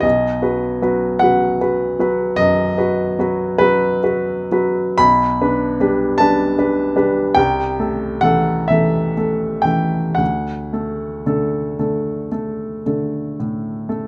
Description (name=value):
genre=classical, romantic nocturne for solo piano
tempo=37-52 BPM (dotted quarters)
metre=12/8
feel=rubato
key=G major from 5.0 s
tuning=A4 = 441 Hz
part: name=warm baby grand piano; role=solo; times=0.0-14.1 s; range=B1 to B5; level=-18 LUFS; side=equal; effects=none
room=light reverb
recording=none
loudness=-18 LUFS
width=mono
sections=0.0-14.1 A section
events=none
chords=0.0 B; 5.0 G/B; 7.4 Am7/C; 10.2 D